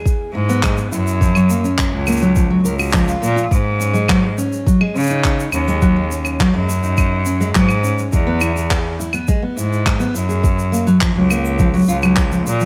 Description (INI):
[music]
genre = folktronica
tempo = 104 BPM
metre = 4/4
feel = straight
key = unclear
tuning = A4 = 440 Hz
[part]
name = fingerpicked steel-string acoustic guitar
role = arpeggios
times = 0.0-12.7 s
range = F3 to Bb4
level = -20 LUFS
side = equal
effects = none
[part]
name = electronic kick drum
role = drums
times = 0.1-12.3 s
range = none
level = -20 LUFS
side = equal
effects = overdrive
[part]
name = shaker, handclaps and claves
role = drums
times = 0.1-12.7 s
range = none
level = -26 LUFS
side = equal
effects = none
[part]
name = bright cello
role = bass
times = 0.3-12.7 s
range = Db2 to Db3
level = -21 LUFS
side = equal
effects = none
[sound]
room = studio reverb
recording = none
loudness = -17 LUFS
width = mono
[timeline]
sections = 0.0-12.7 A section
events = none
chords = 0.0 E; 1.2 Gbmaj7; 3.5 Ab7sus4; 8.1 E; 10.4 Gbmaj7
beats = 0.05 0.63 | 1.21 1.78 2.36 2.94 | 3.52 4.09 4.67 5.25 | 5.82 6.40 6.98 7.55 | 8.13 8.71 9.29 9.86 | 10.44 11.02 11.59 12.17